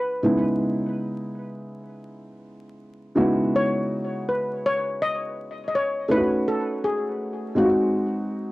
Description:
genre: hip hop.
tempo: 82 BPM.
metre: 4/4.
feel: swing 59% on 16ths.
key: C# minor.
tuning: A4 = 441 Hz.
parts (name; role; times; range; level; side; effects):
steel pan; melody; 0.0-8.5 s; F#4 to D#5; -25 LUFS; left 1 dB; cassette tape, analog delay.
dark baby grand piano; accompaniment; 0.0-8.5 s; C#3 to F#4; -24 LUFS; equal; none.
room: moderate studio reverb, RT60 0.5 s.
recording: home recording on cassette, vinyl crackle.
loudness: -22 LUFS.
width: side -19 dB against mid.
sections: 0.0-3.2 A section; 3.2-8.5 B section.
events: none.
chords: 0.0 C#m9; 3.2 C#m11; 6.1 D#m7b5; 7.6 G#7.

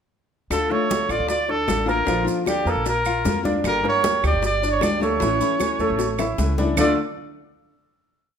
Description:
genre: latin, Cuban son and guajira.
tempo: 153 BPM.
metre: 4/4.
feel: straight.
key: D harmonic minor.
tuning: A4 = 443 Hz.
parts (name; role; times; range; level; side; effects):
warm trumpet; melody; 0.5-7.0 s; G4 to D5; -23 LUFS; right 2 dB; none.
flamenco guitar; accompaniment; 0.5-6.9 s; D3 to G4; -28 LUFS; left 6 dB; none.
upright bass; bass; 0.5-7.0 s; G1 to F2; -26 LUFS; equal; none.
bongos; percussion; 0.5-6.9 s; none; -31 LUFS; left 6 dB; none.
claves; percussion; 0.5-6.9 s; none; -33 LUFS; right 8 dB; none.
congas; percussion; 0.5-6.9 s; none; -30 LUFS; left 1 dB; none.
maracas; percussion; 0.5-6.9 s; none; -36 LUFS; right 6 dB; none.
clear baby grand piano; arpeggios; 0.7-7.0 s; D3 to G5; -25 LUFS; right 1 dB; none.
room: light reverb.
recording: minimal, uncompressed stereo recording.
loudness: -19 LUFS.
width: side -7 dB against mid.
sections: 0.5-6.8 A section; 6.8-8.3 final chord.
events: drum fill 6.0-6.8.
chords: 0.5 Dm; 2.1 Bb; 3.6 Gm; 5.2 A; 6.8 Dm.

